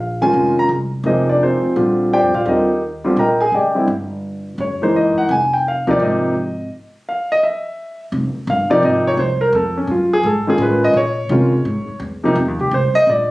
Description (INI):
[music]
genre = jazz piano trio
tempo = 170 BPM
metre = 4/4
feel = swing 65% on 8ths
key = F minor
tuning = A4 = 441 Hz
[part]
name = warm concert grand piano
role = melody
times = 0.0-13.3 s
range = C3 to Bb5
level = -15 LUFS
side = equal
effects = none
[part]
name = upright bass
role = bass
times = 0.0-13.3 s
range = F1 to C3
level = -22 LUFS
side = equal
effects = none
[sound]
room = moderate studio ambience, RT60 0.5 s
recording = recorded on a phone in the room, studio reverb, compression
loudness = -14 LUFS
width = side -19 dB against mid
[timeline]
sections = 0.0-8.1 A section; 8.1-13.3 B section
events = stop 6.7-8.1; grand piano solo 8.1-13.3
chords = 0.0 Bbm9; 1.0 Fm7; 1.7 Bb69; 2.5 Ebmaj7; 3.9 N.C.; 4.6 Gb13; 5.3 Fm7; 6.7 N.C.; 8.1 Fm11; 9.5 F7alt; 10.9 Bbm9; 12.4 F5